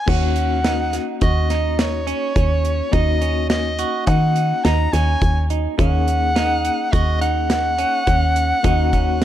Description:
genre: progressive instrumental, band music in an uneven meter.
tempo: 105 BPM.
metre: 5/4.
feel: straight.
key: Eb minor.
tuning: A4 = 440 Hz.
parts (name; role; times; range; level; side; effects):
breathy soprano saxophone; melody; 0.0-9.2 s; Db5 to Bb5; -22 LUFS; left 1 dB; tape echo.
overdriven tine electric piano; accompaniment; 0.1-9.2 s; Bb3 to Ab4; -28 LUFS; left 12 dB; medium tremolo.
semi-hollow electric guitar; arpeggios; 0.1-9.2 s; Db4 to Gb4; -25 LUFS; right 10 dB; spring reverb, tape echo.
woody FM bass; bass; 0.1-9.2 s; Eb2 to Eb3; -20 LUFS; equal; none.
deep reggae drum kit; drums; 0.1-9.2 s; crash cymbal, hi-hat, kick drum, snare drum; -21 LUFS; equal; none.
room: moderate studio reverb, RT60 0.7 s.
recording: dark, warm production.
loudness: -16 LUFS.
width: side -12 dB against mid.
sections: 0.1-9.2 A section.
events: none.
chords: 0.1 Ebm7.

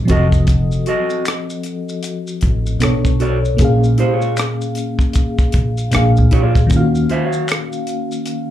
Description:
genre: R&B, neo-soul.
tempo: 77 BPM.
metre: 4/4.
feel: swing 60% on 16ths.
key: unclear.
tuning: A4 = 440 Hz.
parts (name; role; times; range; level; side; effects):
FM electric piano with tremolo; accompaniment; 0.0-8.5 s; Bb2 to F5; -18 LUFS; left 1 dB; phaser.
upright bass; bass; 0.0-7.1 s; F1 to Eb2; -17 LUFS; equal; none.
mellow electric guitar; second line; 0.1-7.5 s; F4 to F5; -20 LUFS; right 3 dB; slapback echo.
tight funk drum kit; drums; 0.1-8.5 s; hi-hat, kick drum, rim click; -17 LUFS; equal; none.
maracas and finger snaps; percussion; 0.3-8.5 s; none; -32 LUFS; left 2 dB; slapback echo.
room: light reverb.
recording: live gig heard through the venue's PA, club ambience.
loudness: -14 LUFS.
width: side -12 dB against mid.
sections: 0.0-8.5 A section.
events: none.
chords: 0.1 F7b9; 2.8 Bm7; 3.6 Bbm7; 5.9 Bb7; 6.7 Ebm9.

